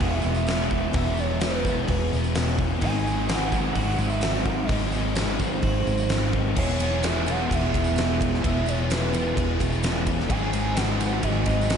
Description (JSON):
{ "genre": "rock, shoegaze and dream pop", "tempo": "128 BPM", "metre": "4/4", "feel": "straight", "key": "E major", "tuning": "A4 = 441 Hz", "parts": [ { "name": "pure sine lead", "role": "melody", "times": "0.0-11.8 s", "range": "B4 to G#5", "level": "-31 LUFS", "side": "right 1 dB", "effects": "chorus, analog delay" }, { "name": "electric guitar at the edge of break-up", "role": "arpeggios", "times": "0.0-11.8 s", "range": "D#3 to G#4", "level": "-36 LUFS", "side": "right 2 dB", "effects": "none" }, { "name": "biting overdriven guitar", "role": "riff", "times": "0.0-11.8 s", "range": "G#2 to G#4", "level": "-32 LUFS", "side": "equal", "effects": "none" }, { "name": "overdriven electric guitar", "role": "riff", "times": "0.0-11.8 s", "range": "E2 to G#4", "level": "-31 LUFS", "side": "right 8 dB", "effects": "reverse reverb" }, { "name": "thick fuzz guitar", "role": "riff", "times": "0.0-11.8 s", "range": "E2 to G#3", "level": "-29 LUFS", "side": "left 7 dB", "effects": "distortion, ensemble chorus" }, { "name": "vintage muted fingered electric bass", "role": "bass", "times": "0.0-11.8 s", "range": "E1 to G#1", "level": "-28 LUFS", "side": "equal", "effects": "none" }, { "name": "huge arena drum kit", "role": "drums", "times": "0.0-11.8 s", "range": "crash cymbal, hi-hat, kick drum, ride cymbal, snare drum", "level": "-28 LUFS", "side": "equal", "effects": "none" }, { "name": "tambourine", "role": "percussion", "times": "0.2-11.8 s", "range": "none", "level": "-43 LUFS", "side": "right 6 dB", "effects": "none" } ], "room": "moderate lush hall reverb, RT60 2.0 s, studio reverb", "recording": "dreamy mix soaked in reverb, nothing above 11.0 kHz", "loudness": "-22 LUFS", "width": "side -7 dB against mid", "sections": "0.0-6.6 A section; 6.6-11.8 B section", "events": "none", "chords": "0.0 E6; 2.8 G#7; 6.6 E6; 10.3 G#7" }